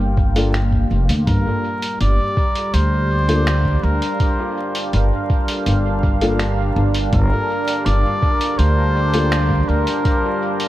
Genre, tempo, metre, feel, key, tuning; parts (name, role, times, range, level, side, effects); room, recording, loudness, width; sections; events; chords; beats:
ambient dub; 82 BPM; 4/4; straight; G minor; A4 = 440 Hz
deep dark ambient pad; sustained chords; 0.0-10.7 s; G3 to A5; -23 LUFS; right 1 dB; chorus, built-in reverb
dark upright piano; stabs; 0.0-9.3 s; Bb3 to Bb4; -26 LUFS; left 2 dB; dub echo
upright bass; bass; 0.0-9.8 s; F1 to D2; -17 LUFS; equal
wind-like tuned noise texture; texture; 0.0-1.3 s; F5; -36 LUFS; left 3 dB; built-in reverb
electronic kick drum; drums; 0.2-10.2 s; -19 LUFS; equal; overdrive
lo-fi sampler-style drum kit; drums; 0.4-10.7 s; finger snaps, hi-hat; -27 LUFS; equal; overdrive, dub echo
trumpet with cup mute; melody; 1.3-10.7 s; Bb4 to D5; -24 LUFS; equal; dub echo
light reverb, digital ambience; vinyl crackle; -15 LUFS; side -15 dB against mid
0.0-1.3 A section; 1.3-10.7 B section
0.0 Gm7; 1.3 Gm9
0.54 | 1.27 2.00 2.73 3.47 | 4.20 4.93 5.66 6.39 | 7.12 7.86 8.59 9.32 | 10.05